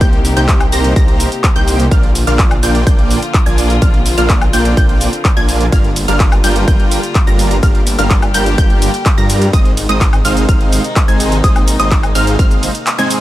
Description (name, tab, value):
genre	EDM, festival progressive house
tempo	126 BPM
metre	4/4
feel	straight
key	unclear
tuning	A4 = 440 Hz
part	warm chamber string section	sustained chords	0.0-13.2 s	C3 to G4	-22 LUFS	left 2 dB	sidechain pumping
part	wide unison pluck	arpeggios	0.0-13.2 s	Eb6 to Bb6	-22 LUFS	equal	sidechain pumping, tape echo
part	dense compressed supersaw	riff	0.0-13.2 s	G3 to Bb5	-18 LUFS	right 1 dB	sidechain pumping, tape echo
part	detuned saw bass	bass	0.0-12.7 s	G1 to G2	-16 LUFS	equal	sidechain pumping
part	big-room dance drum kit	drums	0.0-13.2 s	cabasa, handclaps, hi-hat, ride cymbal, woodblock	-20 LUFS	equal	none
part	electronic kick drum	drums	0.0-12.5 s	none	-12 LUFS	equal	none
room	digital ambience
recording	none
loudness	-10 LUFS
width	side -15 dB against mid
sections	0.0-13.2 A section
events	band accent 12.9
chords	0.0 Cm7; 1.9 Bb; 5.7 Gm7; 9.5 Ab